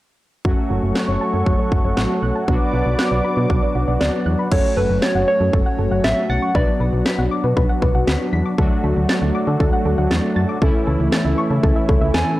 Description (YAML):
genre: synth-pop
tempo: 118 BPM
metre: 4/4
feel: straight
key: F# minor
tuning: A4 = 440 Hz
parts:
  - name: analog synth brass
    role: accompaniment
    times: 0.4-12.4 s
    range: E3 to F#4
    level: -22 LUFS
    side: equal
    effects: chorus
  - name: brassy analog pad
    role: sustained chords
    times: 0.4-4.5 s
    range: A4 to D6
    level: -24 LUFS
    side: right 1 dB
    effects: chorus
  - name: soft round pluck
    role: arpeggios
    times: 0.4-12.2 s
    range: F#4 to B6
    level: -26 LUFS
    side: right 1 dB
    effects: chorus, tape echo
  - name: solid FM bass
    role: bass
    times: 0.4-12.2 s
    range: F#1 to D3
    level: -20 LUFS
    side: equal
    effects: none
  - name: house drum kit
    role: drums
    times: 0.4-12.3 s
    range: crash cymbal, kick drum, snare drum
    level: -20 LUFS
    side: equal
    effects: overdrive
  - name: soft struck synth lead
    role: melody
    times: 4.0-7.1, 12.1-12.4 s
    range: B4 to G#5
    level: -21 LUFS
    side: right 1 dB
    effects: chorus, tape echo
room: light reverb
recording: dry, gritty hardware recording, transformer saturation, cassette tape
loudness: -16 LUFS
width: side -16 dB against mid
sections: 0.4-4.5 A section; 4.5-12.4 B section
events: none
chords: 0.4 F#m; 2.5 Bm; 4.5 F#m; 6.5 Bm; 8.6 D; 10.6 A/C#